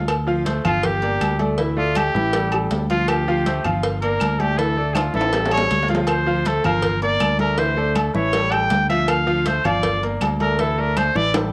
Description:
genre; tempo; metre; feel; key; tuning
latin, salsa; 160 BPM; 4/4; straight; D minor; A4 = 440 Hz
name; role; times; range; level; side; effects
clear concert grand piano; accompaniment; 0.0-11.5 s; E3 to F5; -26 LUFS; equal; none
fingered electric bass; bass; 0.0-11.5 s; G1 to D2; -27 LUFS; equal; none
agogo bells and timbales; percussion; 0.1-11.5 s; none; -30 LUFS; equal; none
claves; percussion; 0.1-11.2 s; none; -34 LUFS; equal; none
congas; percussion; 0.1-11.5 s; none; -30 LUFS; equal; none
cowbell and bongos; percussion; 0.1-11.5 s; none; -30 LUFS; equal; none
clear trumpet; melody; 0.7-11.3 s; F4 to G5; -24 LUFS; equal; cassette tape
room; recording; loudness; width
light reverb, small room ambience; home recording on cassette; -20 LUFS; mono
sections
0.1-11.5 A section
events
trumpet solo 0.1-11.5; drum fill 5.0-6.1, 11.3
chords
0.1 Dm7; 0.8 Gm7; 1.6 Dsus2; 2.3 Dmadd11/A; 3.1 Dm7; 3.8 Gm7; 4.6 Dsus2; 5.3 A7; 6.1 Dm7; 6.8 Gm7; 7.6 Dsus2; 8.3 A7b13; 9.1 Dm7; 9.8 Gm7; 10.6 Dsus2

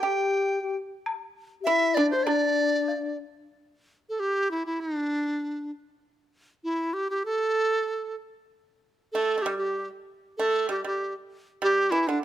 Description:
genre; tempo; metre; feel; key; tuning
chinese traditional, Chinese chamber ensemble; 97 BPM; 2/4; rubato; D shang mode; A4 = 440 Hz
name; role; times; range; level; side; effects
bright reedy large dizi; melody; 0.0-12.2 s; D4 to G5; -25 LUFS; right 1 dB; none
breathy mellow low xiao; second line; 0.0-3.2 s; D4 to C5; -28 LUFS; left 7 dB; none
pipa; second line; 0.0-3.2, 9.1-12.2 s; D3 to G4; -30 LUFS; right 4 dB; none
woodblock; percussion; 1.1-3.0 s; none; -36 LUFS; left 3 dB; none
room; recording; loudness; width
light reverb; close, detailed microphones; -24 LUFS; side -12 dB against mid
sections
0.0-3.5 A section; 3.5-12.2 B section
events
none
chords
none

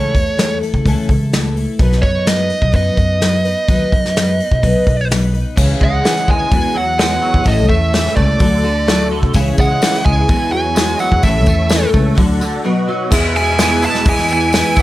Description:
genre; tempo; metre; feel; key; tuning
folk rock and heartland rock; 127 BPM; 4/4; straight; E major; A4 = 439 Hz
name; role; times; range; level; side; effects
bluesy overdriven lead guitar; melody; 0.0-14.8 s; C#5 to A5; -18 LUFS; right 2 dB; distortion
picked twelve-string acoustic guitar; accompaniment; 0.0-14.8 s; A2 to B4; -20 LUFS; left 3 dB; analog chorus
upright bass; bass; 0.0-14.8 s; A1 to C#3; -18 LUFS; equal; none
soft brush drum kit; drums; 0.1-14.8 s; crash cymbal, hi-hat, kick drum, snare drum; -16 LUFS; equal; none
twangy electric guitar; riff; 5.6-14.8 s; E2 to E4; -20 LUFS; right 2 dB; ensemble chorus
tambourine; percussion; 9.3-14.8 s; none; -32 LUFS; left 4 dB; none
tonewheel organ; sustained chords; 9.4-14.8 s; E4 to G#5; -29 LUFS; equal; none
warm concert grand piano; accompaniment; 13.1-14.8 s; E4 to E5; -28 LUFS; left 2 dB; none
room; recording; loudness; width
light reverb, small room ambience; none; -12 LUFS; side -16 dB against mid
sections
0.0-5.6 A section; 5.6-13.1 B section; 13.1-14.8 C section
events
break 12.6-13.1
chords
0.0 A/C#; 1.8 B; 5.6 C#m; 6.5 Eadd9; 7.5 A; 8.4 D; 9.3 C#m; 10.3 Eadd9; 11.2 A; 12.2 D; 12.6 B; 13.1 E

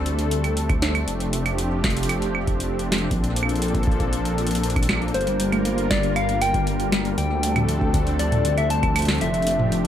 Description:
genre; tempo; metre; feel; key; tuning
IDM; 118 BPM; 4/4; straight; G minor; A4 = 440 Hz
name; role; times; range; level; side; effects
warm analog pad; sustained chords; 0.0-9.9 s; F3 to Bb4; -26 LUFS; left 1 dB; chorus
dark detuned saw bass; bass; 0.0-9.9 s; F1 to D2; -25 LUFS; equal; tube saturation
booming analog drum machine; drums; 0.1-9.9 s; claves, hi-hat, snare drum, toms; -26 LUFS; right 1 dB; none
electronic kick drum; drums; 0.7-8.9 s; none; -25 LUFS; equal; none
soft struck synth lead; melody; 5.1-9.9 s; C5 to A5; -25 LUFS; left 2 dB; chorus, digital delay
harp-like synth pluck; arpeggios; 5.3-9.9 s; D3 to Bb3; -27 LUFS; left 1 dB; chorus, digital delay
room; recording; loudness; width
light reverb; none; -20 LUFS; side -10 dB against mid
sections
0.0-9.9 A section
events
none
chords
0.0 D7sus4; 1.1 F69; 3.1 Bbmaj9; 5.1 Gm7; 7.2 D7sus4; 9.2 F69

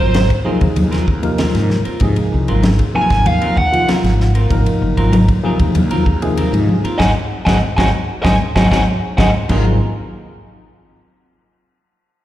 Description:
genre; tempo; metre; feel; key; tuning
electric jazz fusion; 96 BPM; 4/4; straight; Ab mixolydian; A4 = 440 Hz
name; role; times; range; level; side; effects
bluesy overdriven lead guitar; melody; 0.0-9.3 s; C5 to Ab5; -19 LUFS; right 1 dB; distortion, slapback echo, analog delay
tine electric piano; accompaniment; 0.0-9.8 s; C3 to Bb4; -20 LUFS; left 1 dB; medium stereo tremolo, lush chorus, slapback echo
clean electric guitar; stabs; 0.0-9.8 s; Gb3 to Bb4; -24 LUFS; equal; analog chorus, slapback echo
mellow fretless electric bass; bass; 0.0-9.8 s; Gb1 to Ab2; -16 LUFS; equal; none
tight funk drum kit; drums; 0.1-9.6 s; crash cymbal, kick drum, ride cymbal, snare drum; -21 LUFS; equal; none
congas; percussion; 0.1-9.8 s; none; -20 LUFS; equal; none
room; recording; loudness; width
light reverb; live gig heard through the venue's PA, recital hall reverb; -12 LUFS; side -14 dB against mid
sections
0.0-9.5 A section; 9.5-12.0 B section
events
lead electric guitar solo 0.0-9.5; band accent 7.0-9.5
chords
0.0 Ab13

